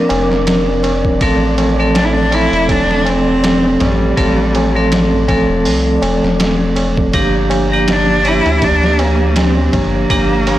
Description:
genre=trip hop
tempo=81 BPM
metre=4/4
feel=swing 56% on 16ths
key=unclear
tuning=A4 = 440 Hz
part: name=rich cello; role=melody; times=0.0-10.6 s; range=G3 to E4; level=-17 LUFS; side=equal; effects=tape echo
part: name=vibraphone with hard mallets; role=accompaniment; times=0.0-10.6 s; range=F3 to Bb4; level=-15 LUFS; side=right 1 dB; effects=tremolo, vintage 12-bit sampler grit, tape echo
part: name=flickering grainy texture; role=texture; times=0.0-10.6 s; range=D5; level=-27 LUFS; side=equal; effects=built-in reverb
part: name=soft dub sub bass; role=bass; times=0.1-10.6 s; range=E1 to D2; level=-18 LUFS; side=equal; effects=tube saturation
part: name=trip hop sampler-style drum kit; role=drums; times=0.1-10.6 s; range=hi-hat, kick drum, ride cymbal, snare drum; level=-19 LUFS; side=equal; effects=overdrive
part: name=tabla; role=percussion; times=0.1-10.6 s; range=none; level=-24 LUFS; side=left 2 dB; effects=none
room=light reverb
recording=blown-out, overdriven recording, overdrive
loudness=-11 LUFS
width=side -14 dB against mid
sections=0.0-10.6 A section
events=none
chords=0.0 Bbadd9; 1.2 F; 7.1 Gm7

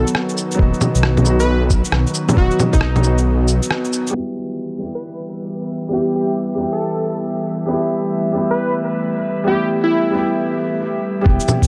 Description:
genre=future garage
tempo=135 BPM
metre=4/4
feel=swing 63% on 16ths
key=E harmonic minor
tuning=A4 = 441 Hz
part: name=plucky unison lead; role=melody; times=0.0-10.3 s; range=D#4 to B4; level=-26 LUFS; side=equal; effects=tape echo
part: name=felt-muted upright piano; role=accompaniment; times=0.0-11.7 s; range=F#3 to G4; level=-24 LUFS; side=equal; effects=sidechain pumping, tape echo
part: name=warbly tape-like pad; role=sustained chords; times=0.0-11.7 s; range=D#3 to B3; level=-26 LUFS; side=equal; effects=chorus, built-in reverb, sidechain pumping
part: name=swelling detuned saw bass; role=bass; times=0.0-3.6, 11.3-11.7 s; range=D#1 to B1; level=-19 LUFS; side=equal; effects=tube saturation, sidechain pumping
part: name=electronic shaker, rim click, cabasa and bongos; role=drums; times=0.1-4.1, 11.4-11.7 s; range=none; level=-22 LUFS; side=equal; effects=low-pass filter on perc, low-pass filter on snare
part: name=electronic kick drum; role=drums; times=0.6-2.8, 11.3-11.7 s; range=none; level=-17 LUFS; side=equal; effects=none
part: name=drifting glass-harmonics texture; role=texture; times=5.7-11.7 s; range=E5 to F#5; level=-31 LUFS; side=equal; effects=chorus, built-in reverb
room=light reverb, digital ambience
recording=low-pass filter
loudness=-18 LUFS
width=mono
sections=0.0-4.1 A section; 4.1-11.3 B section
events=break 3.7-4.1; band accent 3.7; filter sweep on ambient pad 4.1-11.3; filter sweep 4.1-11.3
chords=0.0 B/D#; 4.1 Em

